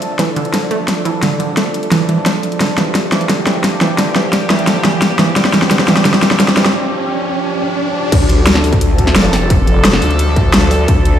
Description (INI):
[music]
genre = dark technical drum and bass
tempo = 174 BPM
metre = 4/4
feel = straight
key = D minor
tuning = A4 = 440 Hz
[part]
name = sweeping resonant pad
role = sustained chords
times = 0.0-11.2 s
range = F3 to A4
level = -19 LUFS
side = equal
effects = chorus, sidechain pumping
[part]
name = dubstep drum kit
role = drums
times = 0.0-11.1 s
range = crash cymbal, hi-hat, snare drum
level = -14 LUFS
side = left 1 dB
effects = small room reverb
[part]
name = riser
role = sound effects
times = 0.0-8.1 s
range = none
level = -22 LUFS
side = equal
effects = none
[part]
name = wide unison pluck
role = arpeggios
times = 0.2-6.7 s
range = D3 to A3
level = -18 LUFS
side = right 4 dB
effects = sidechain pumping, digital delay
[part]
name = growl bass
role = bass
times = 8.1-11.2 s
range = F1 to D2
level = -14 LUFS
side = equal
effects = chorus, overdrive, sidechain pumping
[part]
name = electronic kick drum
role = drums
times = 8.1-10.9 s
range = none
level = -13 LUFS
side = equal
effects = distortion, small room reverb
[sound]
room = light reverb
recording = played on a big sound system in a bare room, stone room reverb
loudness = -11 LUFS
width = side -10 dB against mid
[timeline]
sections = 0.0-8.1 A section; 8.1-11.2 B section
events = build-up 0.0-8.1; drum fill 0.0-6.7; riser 0.0-8.1; break 6.7-8.1; drop 8.1-11.2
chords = 0.0 Dm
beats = 0.19 0.54 0.88 | 1.23 1.57 1.92 2.26 | 2.61 2.95 3.29 3.64 | 3.98 4.33 4.67 5.02 | 5.36 5.71 6.05 6.40 | 6.74 7.09 7.43 7.78 | 8.12 8.47 8.81 9.16 | 9.50 9.85 10.19 10.54 | 10.88